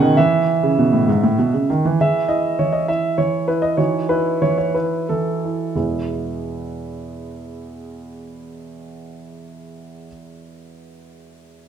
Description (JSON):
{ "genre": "classical-period piano sonatina", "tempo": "57-67 BPM (dotted quarters)", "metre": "6/8", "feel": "straight", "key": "E major", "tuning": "A4 = 440 Hz", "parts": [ { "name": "warm concert grand piano", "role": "solo", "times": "0.0-11.7 s", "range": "E2 to G#5", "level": "-18 LUFS", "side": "right 2 dB", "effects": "none" } ], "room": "moderate recital hall reverb, RT60 1.7 s", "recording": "close, detailed microphones", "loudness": "-16 LUFS", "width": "side -8 dB against mid", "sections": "0.0-2.0 A section; 2.0-5.8 B section; 5.8-9.8 C section", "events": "slowing down 1.1-5.8", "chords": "0.2 E5; 2.0 E; 3.8 C#m11/E; 5.8 E", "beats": "| 0.16 1.07 | 1.98 2.88 | 3.79 4.75 | 5.77 6.78 | 7.78 8.78" }